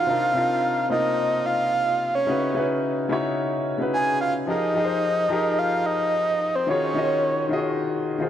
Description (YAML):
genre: amapiano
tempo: 109 BPM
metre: 4/4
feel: straight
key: unclear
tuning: A4 = 440 Hz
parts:
  - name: breathy flute-like synth lead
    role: melody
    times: 0.0-7.8 s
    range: C5 to Ab5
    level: -23 LUFS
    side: right 1 dB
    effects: chorus, digital delay
  - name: warm concert grand piano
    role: accompaniment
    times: 0.0-8.3 s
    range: C3 to Eb5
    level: -24 LUFS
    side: left 2 dB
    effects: none
room: moderate lush hall reverb, RT60 2.8 s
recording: none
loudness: -21 LUFS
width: side -10 dB against mid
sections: 0.0-8.3 A section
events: none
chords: 0.1 Cm11; 2.3 Dbm11; 4.5 Fm11; 6.7 Ebm11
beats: | 0.08 0.63 1.18 1.73 | 2.28 2.83 3.38 3.93 | 4.48 5.03 5.58 6.13 | 6.68 7.23 7.78